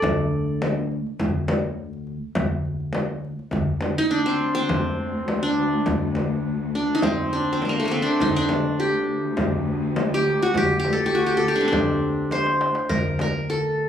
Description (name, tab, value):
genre	Arabic maqam ensemble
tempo	102 BPM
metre	4/4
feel	straight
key	D maqam hijaz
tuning	A4 = 439 Hz
part	qanun	melody	0.0-13.9 s	A3 to D5	-22 LUFS	equal	plate reverb
part	upright bass	bass	0.0-13.9 s	D2 to D3	-28 LUFS	equal	none
part	darbuka	percussion	0.0-13.9 s	none	-33 LUFS	equal	none
part	frame drum	percussion	0.0-13.3 s	none	-27 LUFS	left 2 dB	none
part	warm symphonic cello section	drone	3.5-13.0 s	D2	-30 LUFS	equal	none
room	moderate studio reverb, RT60 0.6 s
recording	recorded on a phone in the room, club reverb, compression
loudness	-20 LUFS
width	side -9 dB against mid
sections	0.0-3.5 A section; 3.5-12.9 B section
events	drum fill 12.3-12.9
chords	none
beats	0.02 0.60 | 1.19 1.77 2.36 2.94 | 3.53 4.11 4.70 5.28 | 5.87 6.45 7.04 7.62 | 8.21 8.79 9.38 9.97 | 10.55 11.14 11.72 12.31 | 12.90 13.48